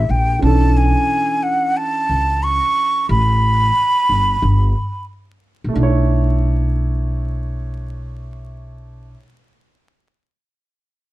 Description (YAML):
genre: hip hop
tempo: 90 BPM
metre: 4/4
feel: swing 66% on 16ths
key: B minor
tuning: A4 = 439 Hz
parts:
  - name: breathy concert flute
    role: melody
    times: 0.0-5.1 s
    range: E5 to C#6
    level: -17 LUFS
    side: right 1 dB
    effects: none
  - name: dark concert grand piano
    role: accompaniment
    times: 0.0-9.2 s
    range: E3 to C#5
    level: -23 LUFS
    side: right 3 dB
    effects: none
  - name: upright bass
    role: bass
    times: 0.0-9.1 s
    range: G1 to C#2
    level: -17 LUFS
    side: equal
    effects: none
room: light reverb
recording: band playing live in one room, vinyl crackle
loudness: -14 LUFS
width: side -16 dB against mid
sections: 0.4-5.8 A section; 5.8-8.4 B section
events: none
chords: 0.4 Bm11; 3.1 Asus2; 5.8 Bm11